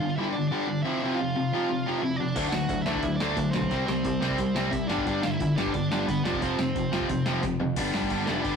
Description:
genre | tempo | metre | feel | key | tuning
punk rock | 178 BPM | 4/4 | straight | G mixolydian | A4 = 441 Hz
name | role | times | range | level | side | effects
overdriven electric guitar | melody | 0.0-8.6 s | B3 to G5 | -32 LUFS | right 2 dB | none
distorted electric guitar | riff | 0.0-8.6 s | F2 to D4 | -29 LUFS | right 4 dB | distortion
overdriven electric guitar | riff | 0.0-8.6 s | F2 to D4 | -29 LUFS | left 7 dB | none
picked electric bass | bass | 2.4-8.6 s | F1 to F2 | -33 LUFS | equal | none
electro analog drum machine | drums | 2.4-8.5 s | crash cymbal, hi-hat, kick drum, snare drum, toms | -33 LUFS | right 1 dB | none
room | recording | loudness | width
moderate stone room reverb, RT60 1.1 s | rough rehearsal-room recording, warm saturation | -24 LUFS | side -6 dB against mid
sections
0.0-7.8 A section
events
drum fill 7.4-7.8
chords
0.0 G5; 0.8 F5; 2.4 D; 3.7 C; 4.9 G; 6.3 F5; 7.8 G

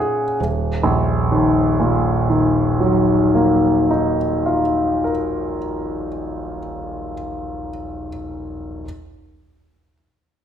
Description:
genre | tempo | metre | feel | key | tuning
classical, impressionist solo piano | 38 BPM | 4/4 | rubato | Eb minor | A4 = 440 Hz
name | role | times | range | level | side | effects
bright concert grand piano | solo | 0.0-8.9 s | Eb1 to Ab5 | -17 LUFS | equal | none
room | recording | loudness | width
moderate recital hall reverb, RT60 1.5 s | minimal, uncompressed stereo recording | -16 LUFS | side -8 dB against mid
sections
0.4-6.6 A section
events
none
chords
0.4 Ebmadd9

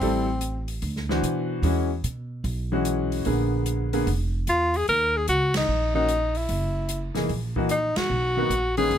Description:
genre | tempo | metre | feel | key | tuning
jazz, small-group swing and bop | 148 BPM | 4/4 | swing 66% on 8ths | unclear | A4 = 439 Hz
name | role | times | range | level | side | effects
breathy tenor saxophone | melody | 0.0-0.7, 4.5-9.0 s | C4 to A#4 | -24 LUFS | left 1 dB | none
clear concert grand piano | accompaniment | 0.0-8.9 s | D3 to C5 | -25 LUFS | left 1 dB | none
upright bass | bass | 0.0-9.0 s | E#1 to B2 | -27 LUFS | right 1 dB | none
open jazz drum kit | drums | 0.0-9.0 s | hi-hat, kick drum, ride cymbal, snare drum | -34 LUFS | equal | none
room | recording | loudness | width
little or no reverb | close, detailed microphones | -22 LUFS | side -9 dB against mid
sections
0.0-9.0 A section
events
band accent 5.5, 7.9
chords
0.0 Am7; 0.8 D9; 1.6 E69; 3.3 A#7b9; 4.9 D#7(no3); 6.5 F#13; 8.1 Bmaj7

